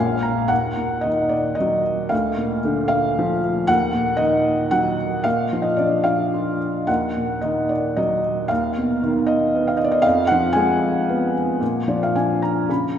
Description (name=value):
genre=classical, lyrical solo piano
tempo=113 BPM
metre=3/4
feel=uneven beats, rubato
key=Eb harmonic minor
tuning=A4 = 440 Hz
part: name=felt-muted upright piano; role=solo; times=0.0-13.0 s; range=A#1 to Cb6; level=-18 LUFS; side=equal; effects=none
room=wet church reverb, RT60 3.8 s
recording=recorded in a church or concert hall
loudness=-18 LUFS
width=side -9 dB against mid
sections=0.5-13.0 A section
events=felt piano fill 0.0-0.5, 11.6-13.0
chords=0.0 N.C.; 0.5 Ebm; 2.1 Bb/D; 3.7 Ebm; 5.3 Bb; 6.9 Ebm; 8.5 B/D#; 10.1 Fdim; 11.6 Bb